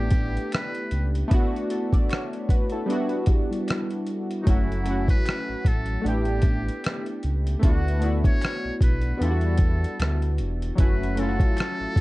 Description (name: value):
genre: lo-fi hip hop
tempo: 76 BPM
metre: 4/4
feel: swing 57% on 16ths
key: E dorian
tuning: A4 = 440 Hz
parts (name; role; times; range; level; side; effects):
- trumpet with metal mute; melody; 0.0-12.0 s; D#4 to C#5; -34 LUFS; equal; plate reverb
- warm analog keys; accompaniment; 0.0-12.0 s; F#3 to D5; -28 LUFS; left 1 dB; chorus, cassette tape, plate reverb
- sub bass with octave; bass; 0.0-12.0 s; E1 to E2; -25 LUFS; equal; none
- dusty soul sampler-style drum kit; drums; 0.1-12.0 s; hi-hat, kick drum, rim click; -22 LUFS; equal; none
- finger snaps; percussion; 0.5-11.8 s; none; -47 LUFS; right 2 dB; none
- mellow tine electric piano; second line; 2.9-4.4 s; G3 to B4; -31 LUFS; right 1 dB; medium stereo tremolo, tape echo, plate reverb
room: little or no reverb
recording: dark, warm production, nothing above 10.8 kHz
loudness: -21 LUFS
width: side -19 dB against mid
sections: 0.0-12.0 A section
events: none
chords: 0.0 A9sus4; 1.3 D69; 2.9 Em7; 4.5 F#m7; 6.0 A9sus4; 7.6 D69; 9.2 Em7; 10.8 F#m7